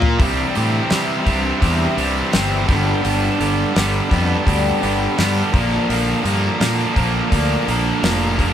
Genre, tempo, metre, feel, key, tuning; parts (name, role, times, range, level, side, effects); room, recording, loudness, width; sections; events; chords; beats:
classic rock; 84 BPM; 4/4; straight; C major; A4 = 440 Hz
cranked stack guitar; riff; 0.0-8.5 s; G2 to Bb4; -24 LUFS; left 6 dB; overdrive, spring reverb
cranked stack guitar; riff; 0.0-8.5 s; G2 to Bb4; -20 LUFS; right 4 dB; overdrive
fuzz fingered electric bass; bass; 0.0-8.5 s; F1 to C3; -21 LUFS; equal; overdrive
damped 70s drum kit; drums; 0.0-8.5 s; hi-hat, kick drum, snare drum, toms; -21 LUFS; equal
fingerpicked twelve-string acoustic guitar; accompaniment; 0.2-8.5 s; G2 to Bb4; -26 LUFS; left 2 dB
light reverb; band playing live in one room; -15 LUFS; side -10 dB against mid
0.2-8.5 A section
drum fill 0.0
0.2 Cadd9; 2.7 G; 5.5 Bb
| 0.20 0.91 1.62 2.34 | 3.05 3.76 4.47 5.18 | 5.90 6.61 7.32 8.03